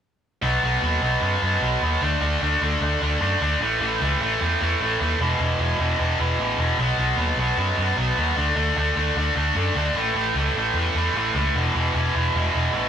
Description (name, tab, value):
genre	punk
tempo	151 BPM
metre	4/4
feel	straight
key	unclear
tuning	A4 = 444 Hz
part	tight distorted guitar	riff	0.4-12.9 s	E2 to D4	-21 LUFS	equal	distortion
part	overdriven picked electric bass	bass	0.4-12.9 s	E1 to F#2	-25 LUFS	equal	none
room	light reverb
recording	rough rehearsal-room recording, warm saturation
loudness	-20 LUFS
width	side -8 dB against mid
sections	0.4-12.9 A section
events	none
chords	0.4 B; 2.0 D5; 3.6 A5; 5.2 E5; 6.8 B; 8.4 D5; 10.0 A; 11.5 E5